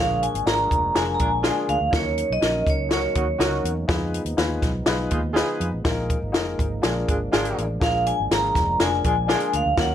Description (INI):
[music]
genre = uptempo 1960s-style soul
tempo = 122 BPM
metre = 4/4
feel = straight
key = unclear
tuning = A4 = 440 Hz
[part]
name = vibraphone with hard mallets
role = melody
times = 0.0-3.6, 7.8-9.9 s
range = Db5 to Bb5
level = -23 LUFS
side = right 1 dB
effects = none
[part]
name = dark upright piano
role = accompaniment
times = 0.0-9.9 s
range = Db4 to Cb5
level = -28 LUFS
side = left 3 dB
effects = none
[part]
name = mellow tonewheel organ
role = sustained chords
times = 0.0-9.9 s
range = Eb3 to Eb4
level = -34 LUFS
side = right 2 dB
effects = slow rotary speaker, chorus vibrato
[part]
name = vintage muted fingered electric bass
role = bass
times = 0.0-9.9 s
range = F1 to F2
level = -28 LUFS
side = equal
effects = none
[part]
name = compact cocktail drum kit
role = drums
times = 0.2-9.9 s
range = hi-hat, kick drum, snare drum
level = -24 LUFS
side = left 1 dB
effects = none
[part]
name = mellow horn section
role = second line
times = 0.9-9.6 s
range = Gb3 to Ab4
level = -29 LUFS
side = right 4 dB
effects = none
[sound]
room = light reverb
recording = none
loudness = -20 LUFS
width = side -10 dB against mid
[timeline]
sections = 0.0-9.9 A section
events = none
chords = 0.0 Bb7; 1.9 Ebm7; 3.9 Fm7b5; 5.8 Bb7sus4; 6.8 Bb7